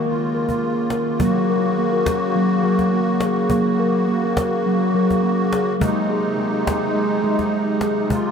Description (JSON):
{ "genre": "world meditative, meditative tuned percussion", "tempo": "104 BPM", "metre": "4/4", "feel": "straight", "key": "unclear", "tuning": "A4 = 440 Hz", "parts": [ { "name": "musette accordion", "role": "sustained chords", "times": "0.0-8.3 s", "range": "C3 to Gb4", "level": "-23 LUFS", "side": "equal", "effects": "none" }, { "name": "steel tongue drum", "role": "arpeggios", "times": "0.0-8.3 s", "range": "Gb3 to Bb4", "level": "-19 LUFS", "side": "equal", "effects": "ping-pong delay" }, { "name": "cajon", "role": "percussion", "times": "0.0-8.3 s", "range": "none", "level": "-29 LUFS", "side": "equal", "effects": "none" } ], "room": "wet huge ambient reverb, RT60 8.8 s", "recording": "in a vast, echoing space", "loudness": "-17 LUFS", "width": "side -6 dB against mid", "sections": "0.0-1.2 A section; 1.2-8.3 B section", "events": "none", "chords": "0.1 Bbm; 1.2 Gb; 5.8 Ab" }